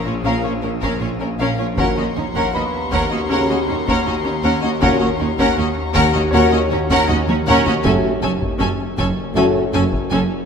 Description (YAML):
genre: cinematic, suspense film score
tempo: 79 BPM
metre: 4/4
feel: straight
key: unclear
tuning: A4 = 438 Hz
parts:
  - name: rich studio violin section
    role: melody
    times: 0.0-10.2 s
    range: Bb4 to Ab5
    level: -25 LUFS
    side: left 5 dB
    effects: none
  - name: clear symphonic violin section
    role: second line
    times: 0.0-10.2 s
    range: Db4 to Bb4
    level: -24 LUFS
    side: left 1 dB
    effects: none
  - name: rich studio viola section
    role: accompaniment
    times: 0.0-10.2 s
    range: Db4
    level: -23 LUFS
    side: right 1 dB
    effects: none
  - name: bowed-like drone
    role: drone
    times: 0.0-10.5 s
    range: Gb1 to Eb2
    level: -24 LUFS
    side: left 1 dB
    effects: built-in reverb
  - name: bright baby grand piano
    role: texture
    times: 0.0-10.5 s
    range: Cb4 to Cb6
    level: -32 LUFS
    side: left 2 dB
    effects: none
  - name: rich studio violin section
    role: texture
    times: 0.0-7.4 s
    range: Bb5 to E6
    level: -31 LUFS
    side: left 6 dB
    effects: none
  - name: dark studio cello section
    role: bass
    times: 0.1-10.2 s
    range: Eb2 to Bb2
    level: -24 LUFS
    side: right 4 dB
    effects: none
  - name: dark French horn section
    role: sustained chords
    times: 0.2-9.6 s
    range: Db4 to Gb4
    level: -24 LUFS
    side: left 6 dB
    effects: none
  - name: dark trombone section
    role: sustained chords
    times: 0.2-9.6 s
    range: A2 to Db4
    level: -25 LUFS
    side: right 3 dB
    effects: none
  - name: rich studio double bass section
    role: bass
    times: 0.2-10.2 s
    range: Gb1 to Eb2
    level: -25 LUFS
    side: right 3 dB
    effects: none
  - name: taiko ensemble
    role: drums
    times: 0.8-10.5 s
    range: none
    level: -26 LUFS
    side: left 1 dB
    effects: none
room: moderate concert hall reverb, RT60 2.1 s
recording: none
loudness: -15 LUFS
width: side -6 dB against mid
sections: 0.0-10.5 A section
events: drum fill 7.1-7.9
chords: 0.0 Bbm; 1.8 Ebm7; 7.9 Gbm